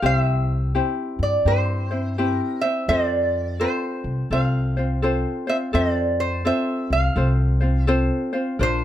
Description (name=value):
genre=Hawaiian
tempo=84 BPM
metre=4/4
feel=swing 63% on 8ths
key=F major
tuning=A4 = 439 Hz
part: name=lap resonator guitar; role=melody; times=0.0-8.8 s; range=C5 to F5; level=-24 LUFS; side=right 2 dB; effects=plate reverb
part: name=ukulele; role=accompaniment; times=0.0-8.8 s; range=C4 to C5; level=-24 LUFS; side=left 2 dB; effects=none
part: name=upright bass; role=bass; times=0.0-8.8 s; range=Bb1 to G2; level=-22 LUFS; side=equal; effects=none
room=light reverb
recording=none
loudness=-19 LUFS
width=side -11 dB against mid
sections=0.0-5.7 A section; 5.7-8.8 A section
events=none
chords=0.0 C; 2.9 F